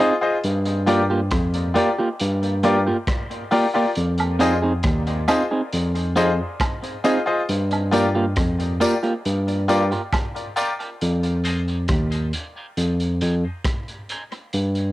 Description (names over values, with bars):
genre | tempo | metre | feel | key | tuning
dub reggae | 68 BPM | 4/4 | straight | F dorian | A4 = 440 Hz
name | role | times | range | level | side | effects
electric guitar at the edge of break-up | accompaniment | 0.0-14.2 s | Bb3 to Ab4 | -24 LUFS | right 2 dB | high-pass filter, cassette tape, dub echo
bright baby grand piano | stabs | 0.0-11.6 s | F4 to Eb5 | -23 LUFS | left 2 dB | high-pass filter, cassette tape, dub echo
crunchy breakbeat drum kit | drums | 0.0-14.9 s | hi-hat, kick drum, rim click | -27 LUFS | equal | cassette tape
barky tine electric piano | bass | 0.4-14.9 s | Eb2 to G2 | -21 LUFS | equal | overdrive
woodblock and tambourine | percussion | 4.2-10.8 s | none | -30 LUFS | right 3 dB | high-pass filter on perc, dub echo
room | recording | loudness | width
light reverb, small room ambience | home recording on cassette | -19 LUFS | side -16 dB against mid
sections
0.0-14.9 A section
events
break 0.0-4.0, 11.0-14.9; filter sweep 7.5-14.5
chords
0.4 Gm7; 4.0 Fm7; 7.5 Gm7; 11.0 Fm7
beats
| 0.43 1.32 2.20 3.08 | 3.96 4.84 5.72 6.60 | 7.48 8.36 9.24 10.13 | 11.01 11.89 12.77 13.65 | 14.54